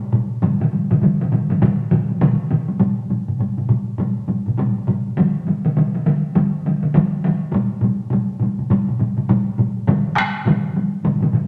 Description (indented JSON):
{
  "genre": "japanese traditional, taiko drum ensemble",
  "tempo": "102 BPM",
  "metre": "4/4",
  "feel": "swing 60% on 16ths",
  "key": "none",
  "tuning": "none",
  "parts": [
    { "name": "taiko ensemble", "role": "percussion", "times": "0.1-11.5 s", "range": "none", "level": "-23 LUFS", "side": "equal", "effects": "none" },
    { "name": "taiko ensemble", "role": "percussion", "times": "0.1-11.5 s", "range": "none", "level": "-23 LUFS", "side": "equal", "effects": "none" },
    { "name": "taiko ensemble", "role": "percussion", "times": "0.4-11.5 s", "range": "none", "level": "-21 LUFS", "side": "equal", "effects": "none" }
  ],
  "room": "wet large studio reverb, RT60 1.2 s",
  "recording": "none",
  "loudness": "-19 LUFS",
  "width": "mono",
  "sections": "0.0-2.8 A section; 2.8-11.5 B section",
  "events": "none",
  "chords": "none"
}